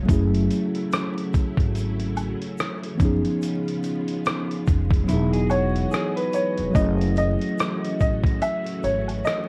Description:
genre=lo-fi hip hop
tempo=72 BPM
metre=4/4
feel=swing 60% on 16ths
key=F# dorian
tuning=A4 = 440 Hz
part: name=mellow tine electric piano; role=accompaniment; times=0.0-9.5 s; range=E3 to G#4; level=-28 LUFS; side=equal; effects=cassette tape, low-pass filter
part: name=string machine, full ensemble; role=sustained chords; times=0.0-9.5 s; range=C#3 to D#5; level=-37 LUFS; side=equal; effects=ensemble chorus, low-pass filter
part: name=upright bass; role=bass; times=0.0-9.2 s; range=E1 to A1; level=-28 LUFS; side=equal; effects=none
part: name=dusty soul sampler-style drum kit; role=drums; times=0.1-9.5 s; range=hi-hat, kick drum, rim click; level=-27 LUFS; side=equal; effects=none
part: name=egg shaker and woodblock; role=percussion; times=0.1-9.5 s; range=none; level=-39 LUFS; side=equal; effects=none
part: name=electric guitar through a small old amp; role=second line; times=5.1-6.7 s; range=E4 to B4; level=-32 LUFS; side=equal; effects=spring reverb, low-pass filter, analog delay, plate reverb
part: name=warm upright piano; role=melody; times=5.5-9.5 s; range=C#5 to E5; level=-29 LUFS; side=equal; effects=low-pass filter
room=moderate studio reverb, RT60 0.5 s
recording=worn, warbling old tape, cassette tape, vinyl crackle, warbly pitch drift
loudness=-23 LUFS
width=mono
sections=0.0-6.7 A section; 6.7-9.5 B section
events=kick muted 5.1-6.7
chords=0.1 F#m7; 3.0 C#7/F#; 5.1 Emaj9; 6.7 F#m7

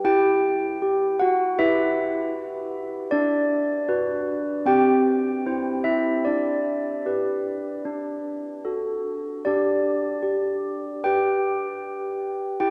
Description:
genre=classical, tune for handbells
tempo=76 BPM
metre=4/4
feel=straight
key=G major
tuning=A4 = 438 Hz
part: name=handbells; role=solo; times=0.0-12.7 s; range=C4 to G5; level=-24 LUFS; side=equal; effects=none
room=wet cathedral reverb, RT60 5.4 s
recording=heard from further back in the room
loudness=-24 LUFS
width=mono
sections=0.0-12.7 A section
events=none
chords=0.1 Em; 3.1 Bm/D; 4.7 C; 6.2 G/D; 7.8 D; 9.4 G

